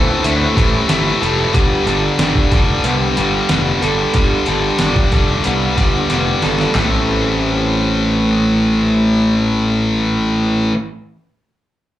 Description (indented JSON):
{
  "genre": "quiet-loud alternative rock",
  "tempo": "92 BPM",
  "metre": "4/4",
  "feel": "straight",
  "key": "A minor",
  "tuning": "A4 = 440 Hz",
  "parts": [
    { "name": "electric guitar through a small old amp", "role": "arpeggios", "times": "0.0-10.8 s", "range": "A2 to A4", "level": "-22 LUFS", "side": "right 4 dB", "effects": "wide subtle chorus, slapback echo" },
    { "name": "high-gain distorted guitar", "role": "riff", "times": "0.0-10.8 s", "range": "G2 to A3", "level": "-17 LUFS", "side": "left 4 dB", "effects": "distortion" },
    { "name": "fuzz picked electric bass", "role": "bass", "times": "0.0-10.7 s", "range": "F1 to D2", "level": "-18 LUFS", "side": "right 1 dB", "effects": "overdrive" },
    { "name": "boom bap sampler-style drum kit", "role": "drums", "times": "0.2-6.9 s", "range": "handclaps, hi-hat, kick drum, snare drum, toms", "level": "-18 LUFS", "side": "equal", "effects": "overdrive" }
  ],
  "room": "little or no reverb",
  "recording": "live gig heard through the venue's PA, club reverb",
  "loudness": "-13 LUFS",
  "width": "side -13 dB against mid",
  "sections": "0.0-6.8 A section; 6.8-9.4 B section",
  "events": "drum fill 6.1-6.8",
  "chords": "0.0 Am7; 1.5 Gadd9; 6.8 Am7"
}